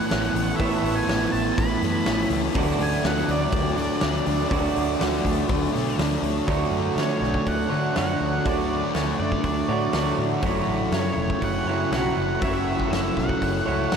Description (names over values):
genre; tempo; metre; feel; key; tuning
rock, shoegaze and dream pop; 122 BPM; 4/4; straight; D major; A4 = 440 Hz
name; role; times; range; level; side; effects
octave-fuzz lead guitar; melody; 0.0-14.0 s; C#5 to B5; -31 LUFS; right 2 dB; distortion, ping-pong delay
electric guitar through a small old amp; arpeggios; 0.0-14.0 s; E3 to F#4; -33 LUFS; right 1 dB; wide subtle chorus, ping-pong delay
electric guitar through a small old amp; riff; 0.0-14.0 s; D3 to D5; -26 LUFS; right 6 dB; reverse reverb
thick fuzz guitar; riff; 0.0-14.0 s; F#2 to D4; -27 LUFS; left 6 dB; distortion, wide subtle chorus
vintage muted fingered electric bass; bass; 0.1-14.0 s; E1 to D3; -29 LUFS; equal; none
huge arena drum kit; drums; 0.1-14.0 s; hi-hat, kick drum, snare drum; -29 LUFS; equal; none
room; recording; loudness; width
wet huge ambient reverb, RT60 7.0 s; dreamy mix soaked in reverb, lossy compression artefacts; -21 LUFS; side -6 dB against mid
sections
0.0-6.5 A section; 6.5-14.0 B section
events
none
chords
0.0 Aadd9; 2.6 D; 6.5 Dmaj7; 10.4 F#m7